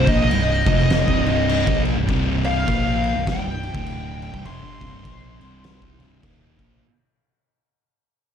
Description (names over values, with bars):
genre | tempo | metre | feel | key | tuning
stoner and doom metal | 101 BPM | 4/4 | swing 60% on 8ths | C dorian | A4 = 439 Hz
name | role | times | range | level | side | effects
fuzz lead guitar | melody | 0.0-6.2 s | Eb5 to C6 | -24 LUFS | left 1 dB | wah, distortion, slapback echo
thick fuzz guitar | riff | 0.0-6.8 s | C2 to Bb3 | -26 LUFS | left 9 dB | distortion
thick fuzz guitar | riff | 0.0-6.8 s | C2 to Bb3 | -25 LUFS | right 10 dB | distortion
fingered electric bass | bass | 0.0-6.8 s | C1 to C2 | -26 LUFS | equal | tube saturation
oversized low-tuned drum kit | drums | 0.1-6.7 s | crash cymbal, kick drum, snare drum | -24 LUFS | equal | none
room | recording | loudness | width
light reverb | none | -17 LUFS | side -8 dB against mid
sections
0.0-6.8 A section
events
fade-out 0.0-6.8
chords
0.0 Cm; 3.7 D5; 4.3 Cm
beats
0.30 0.90 1.49 | 2.08 2.68 3.27 3.86 | 4.46 5.05 5.64 6.23